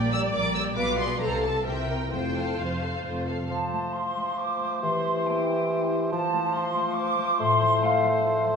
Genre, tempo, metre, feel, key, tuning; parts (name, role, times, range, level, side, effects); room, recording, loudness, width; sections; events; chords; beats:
classical, dramatic, fast romantic movement for symphony orchestra; 127-143 BPM; 3/4; rubato; F major; A4 = 440 Hz
warm studio violin section; melody; 0.0-3.1 s; F5 to E6; -32 LUFS; left 1 dB
warm symphonic violin section; second line; 0.0-3.5 s; F4 to A5; -34 LUFS; left 2 dB
rich symphonic viola section; accompaniment; 0.0-3.3 s; A4 to D5; -31 LUFS; right 2 dB
concert harp; arpeggios; 0.0-8.6 s; A2 to F5; -32 LUFS; left 6 dB
rich symphonic double bass section; bass; 0.0-3.5 s; F1 to C2; -33 LUFS; right 3 dB
warm symphonic cello section; bass; 0.0-3.5 s; F2 to C3; -33 LUFS; right 1 dB
dark clarinet; second line; 3.5-8.6 s; F4 to G4; -35 LUFS; right 2 dB
mellow small flute group; second line; 3.5-8.5 s; F5 to D6; -26 LUFS; equal
warm oboe; second line; 3.5-8.6 s; C5; -32 LUFS; equal
clear bassoon; accompaniment; 3.5-8.6 s; E3 to A3; -28 LUFS; right 1 dB
wet recital hall reverb, RT60 1.5 s; small room reverb; -23 LUFS; side -6 dB against mid
0.0-3.5 A section; 3.5-8.6 B section
0.0 Gm/Bb; 0.8 Bdim7; 1.2 F/C; 1.7 C7; 2.1 F; 4.8 C7/E; 6.1 F; 7.4 F/A
0.33 | 0.77 1.21 1.66 | 2.12 2.59 3.05 | 3.51 3.95 4.39 | 4.83 5.26 5.70 | 6.12 6.55 6.97 | 7.40 7.82 8.25